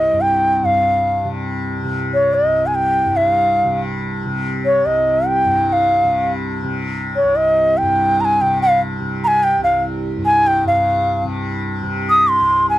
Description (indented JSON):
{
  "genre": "indian classical, Hindustani",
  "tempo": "144 BPM",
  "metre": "3/4",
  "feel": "straight",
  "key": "C raga bhairavi",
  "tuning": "A4 = 440 Hz",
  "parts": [
    { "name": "bansuri", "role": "melody", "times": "0.0-12.8 s", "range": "Db5 to Eb6", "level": "-14 LUFS", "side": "equal", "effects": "none" },
    { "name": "tanpura", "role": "drone", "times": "0.0-12.8 s", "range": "C2 to C3", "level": "-22 LUFS", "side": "equal", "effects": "stereo widening" }
  ],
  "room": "little or no reverb",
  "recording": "dry, close 1970s-style studio recording",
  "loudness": "-14 LUFS",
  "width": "side -15 dB against mid",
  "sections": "0.6-10.7 A section; 10.7-12.8 B section",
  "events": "speeding up 0.0-12.8",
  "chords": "none"
}